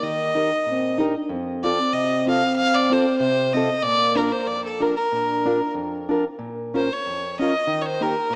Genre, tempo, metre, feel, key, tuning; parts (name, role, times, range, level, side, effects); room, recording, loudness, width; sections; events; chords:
alpine folk, alpine dance band; 94 BPM; 2/4; swing 54% on 8ths; Bb major; A4 = 440 Hz
clear fiddle; melody; 0.0-8.4 s; A4 to F5; -22 LUFS; equal; tape echo
dark euphonium; second line; 0.0-6.1 s; Bb3 to D4; -25 LUFS; equal
fingerpicked plugged-in steel-string acoustic guitar; accompaniment; 0.0-8.4 s; F2 to Bb4; -24 LUFS; equal
moderate concert hall reverb, RT60 1.8 s; small speaker sound; -19 LUFS; side -39 dB against mid
0.0-6.4 A section; 6.4-8.4 B section
0.0 Eb; 1.3 F; 3.8 Bb; 6.4 Bbm; 7.7 Eb